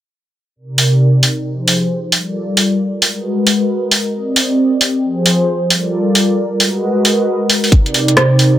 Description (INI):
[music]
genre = UK garage, two-step garage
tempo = 134 BPM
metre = 4/4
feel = swing 62% on 16ths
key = unclear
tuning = A4 = 441 Hz
[part]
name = warm analog pad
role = sustained chords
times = 0.6-8.6 s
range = C3 to Eb5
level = -14 LUFS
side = equal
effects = lush chorus, sidechain pumping
[part]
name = garage drum kit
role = drums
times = 0.8-8.5 s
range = hi-hat, rim click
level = -13 LUFS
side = equal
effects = none
[part]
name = electronic kick drum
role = drums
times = 7.7-7.8 s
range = none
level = -9 LUFS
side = equal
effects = none
[part]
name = kalimba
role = melody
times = 8.2-8.3 s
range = C5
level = -16 LUFS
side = right 1 dB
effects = none
[sound]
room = light reverb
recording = none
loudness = -12 LUFS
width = side -12 dB against mid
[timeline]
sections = 0.6-8.6 A section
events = filter sweep on analog synth pad 0.6-8.6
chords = 0.6 Cm7; 1.5 Fm7; 2.1 Gm7; 3.0 Abm7; 4.1 Cm7; 5.0 Fm7; 5.7 Gm7; 6.6 Abm7; 7.7 Cm7